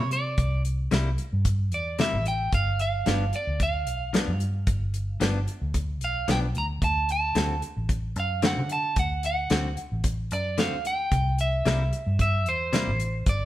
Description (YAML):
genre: straight-eighth soul blues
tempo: 112 BPM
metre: 4/4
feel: straight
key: G mixolydian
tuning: A4 = 440 Hz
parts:
  - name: electric guitar at the edge of break-up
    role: melody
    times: 0.0-13.5 s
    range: C5 to Bb5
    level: -28 LUFS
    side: right 2 dB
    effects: none
  - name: direct-recorded clean electric guitar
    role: stabs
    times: 0.0-12.9 s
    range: G2 to F#4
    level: -30 LUFS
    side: left 3 dB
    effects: none
  - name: vintage muted fingered electric bass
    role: bass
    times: 0.0-13.5 s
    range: G1 to D3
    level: -27 LUFS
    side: equal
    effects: none
  - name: damped 70s drum kit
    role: drums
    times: 0.1-13.4 s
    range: hi-hat, kick drum, snare drum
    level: -28 LUFS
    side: equal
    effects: none
room: moderate stone room reverb, RT60 1.0 s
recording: band playing live in one room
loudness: -23 LUFS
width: side -14 dB against mid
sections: 0.0-13.5 A section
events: none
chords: 0.0 C7; 2.5 G7; 6.8 D7; 11.1 C7